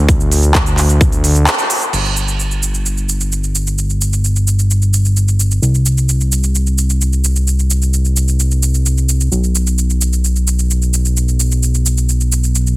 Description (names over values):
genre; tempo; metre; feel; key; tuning
EDM, festival progressive house; 130 BPM; 4/4; straight; G major; A4 = 440 Hz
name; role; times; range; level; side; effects
fat analog bass; bass; 0.0-12.8 s; G1 to D2; -13 LUFS; equal; sidechain pumping
big-room dance drum kit; drums; 0.1-12.8 s; cabasa, crash cymbal, handclaps, hi-hat; -18 LUFS; right 2 dB; none
electronic kick drum; drums; 0.1-1.1 s; none; -13 LUFS; equal; none
room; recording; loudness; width
light reverb; heavily compressed radio sound, multiband compression; -12 LUFS; side -21 dB against mid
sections
0.0-1.9 A section; 1.9-12.8 B section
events
drop 0.0-1.9; break 1.5-1.9; band accent 1.5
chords
none